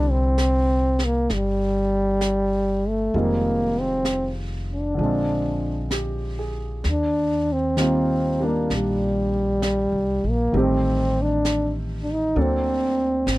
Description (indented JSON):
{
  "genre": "jazz ballad",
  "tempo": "65 BPM",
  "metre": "4/4",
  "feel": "swing 68% on 8ths",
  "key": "unclear",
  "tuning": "A4 = 441 Hz",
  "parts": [
    { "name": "breathy trombone", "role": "melody", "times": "0.0-13.4 s", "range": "G3 to Eb4", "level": "-22 LUFS", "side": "equal", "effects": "none" },
    { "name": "warm baby grand piano", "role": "accompaniment", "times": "0.0-13.4 s", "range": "D3 to A4", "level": "-27 LUFS", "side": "right 1 dB", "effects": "none" },
    { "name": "upright bass", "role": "bass", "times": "0.0-13.4 s", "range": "F1 to Eb2", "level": "-26 LUFS", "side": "equal", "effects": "none" },
    { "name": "jazz brush drum kit", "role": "drums", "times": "0.4-13.4 s", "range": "brushed snare drum, hi-hat, snare drum", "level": "-34 LUFS", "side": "right 1 dB", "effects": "none" }
  ],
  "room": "little or no reverb",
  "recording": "dry, close 1970s-style studio recording",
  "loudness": "-20 LUFS",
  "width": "side -18 dB against mid",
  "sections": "0.0-13.4 A section",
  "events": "none",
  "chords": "0.0 C6; 3.1 Fm7; 5.0 Bb9; 6.8 Eb6; 10.5 Am7b5; 12.4 D7b13"
}